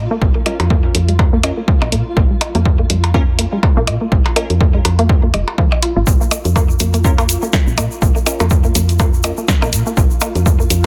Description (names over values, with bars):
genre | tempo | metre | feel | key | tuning
minimal techno | 123 BPM | 4/4 | swing 57% on 16ths | Bb minor | A4 = 436 Hz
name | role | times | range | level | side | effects
woody FM bass | bass | 0.0-10.9 s | F1 to Bb2 | -19 LUFS | equal | sidechain pumping
flickering grainy texture | texture | 0.0-10.9 s | F4 | -32 LUFS | equal | built-in reverb, sidechain pumping
resonant blip pluck | riff | 0.1-10.6 s | F3 to F4 | -25 LUFS | equal | chorus, sidechain pumping, dub echo
electronic kick drum | drums | 0.2-10.6 s | none | -17 LUFS | equal | none
wavetable chord stab | stabs | 0.5-9.3 s | Db4 to Bb4 | -29 LUFS | equal | dub echo
punchy analog drum machine | drums | 0.5-10.8 s | hi-hat, snare drum | -22 LUFS | equal | none
percussion blips | percussion | 0.5-10.3 s | none | -26 LUFS | equal | dub echo
egg shaker | percussion | 6.1-10.8 s | none | -28 LUFS | equal | none
room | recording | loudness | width
digital ambience | dense, heavily limited modern master | -14 LUFS | mono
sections
0.0-10.9 A section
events
filter sweep on synth pluck 0.0-10.9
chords
0.0 Bb5